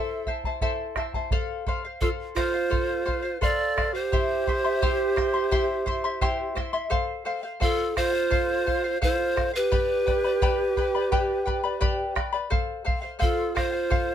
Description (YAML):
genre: andean folk, Andean ensemble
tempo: 86 BPM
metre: 4/4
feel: straight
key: unclear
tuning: A4 = 440 Hz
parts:
  - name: breathy pan flute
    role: melody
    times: 0.0-14.1 s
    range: A4 to D5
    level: -27 LUFS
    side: left 1 dB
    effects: none
  - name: breathy large quena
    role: second line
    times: 0.0-14.1 s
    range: F4 to E5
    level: -29 LUFS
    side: right 6 dB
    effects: none
  - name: charango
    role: accompaniment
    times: 0.0-14.1 s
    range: E4 to C6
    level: -29 LUFS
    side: left 3 dB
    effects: none
  - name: bombo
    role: percussion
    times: 0.3-14.1 s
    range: none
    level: -28 LUFS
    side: equal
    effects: none
room: light reverb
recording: close, detailed microphones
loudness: -23 LUFS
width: side -10 dB against mid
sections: 0.0-1.3 A section; 1.3-14.1 B section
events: none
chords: 0.0 Am; 1.3 F; 4.1 C; 6.9 F; 9.7 G; 12.5 F